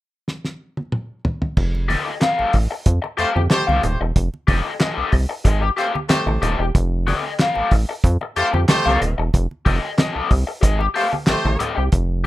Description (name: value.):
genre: funk.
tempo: 93 BPM.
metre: 4/4.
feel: straight.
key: F mixolydian.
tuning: A4 = 440 Hz.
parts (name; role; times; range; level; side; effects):
cloth-damped thuddy drum kit; drums; 0.3-12.1 s; crash cymbal, handclaps, hi-hat, kick drum, snare drum, toms; -19 LUFS; equal; none.
rubbery square bass; bass; 1.6-12.3 s; Eb1 to F2; -20 LUFS; equal; none.
congas; percussion; 1.7-12.1 s; none; -30 LUFS; right 3 dB; none.
raw garage guitar; accompaniment; 1.9-12.3 s; G4 to F5; -22 LUFS; left 3 dB; wah, overdrive.
warm horn section; second line; 3.2-11.8 s; A3 to C5; -22 LUFS; equal; none.
room: light reverb.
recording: rough home demo mix.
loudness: -17 LUFS.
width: side -16 dB against mid.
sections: 0.0-1.6 A section; 1.6-12.3 B section.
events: drum fill 0.3-1.6.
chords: 0.0 N.C.; 1.6 F9.